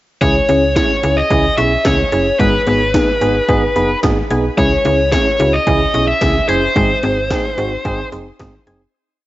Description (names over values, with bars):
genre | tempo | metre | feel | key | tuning
synth-pop | 110 BPM | 4/4 | straight | C# minor | A4 = 437 Hz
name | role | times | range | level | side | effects
high-gain lead guitar | melody | 0.2-8.1 s | B4 to E5 | -16 LUFS | left 1 dB | distortion, cassette tape, shimmer reverb, tape echo
tine electric piano | accompaniment | 0.2-8.8 s | B3 to G#4 | -18 LUFS | right 2 dB | slow stereo tremolo, shimmer reverb
soft round pluck | arpeggios | 0.2-8.9 s | G#3 to G#6 | -24 LUFS | left 2 dB | chorus, shimmer reverb, tape echo
slap-like FM bass | bass | 0.2-8.9 s | F#1 to C#2 | -20 LUFS | equal | none
80s electronic pad drums | drums | 0.2-8.8 s | hi-hat, kick drum, snare drum | -20 LUFS | equal | none
room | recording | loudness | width
moderate digital room reverb, RT60 1.1 s | home recording on cassette, nothing above 7.7 kHz | -12 LUFS | side -16 dB against mid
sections
0.2-8.9 verse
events
fade-out 6.8-8.9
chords
0.2 C#m; 2.4 G#m; 4.6 C#m; 6.8 G#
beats
| 0.21 0.76 1.30 1.85 | 2.40 2.94 3.49 4.03 | 4.58 5.12 5.67 6.21 | 6.76 7.30 7.85 8.40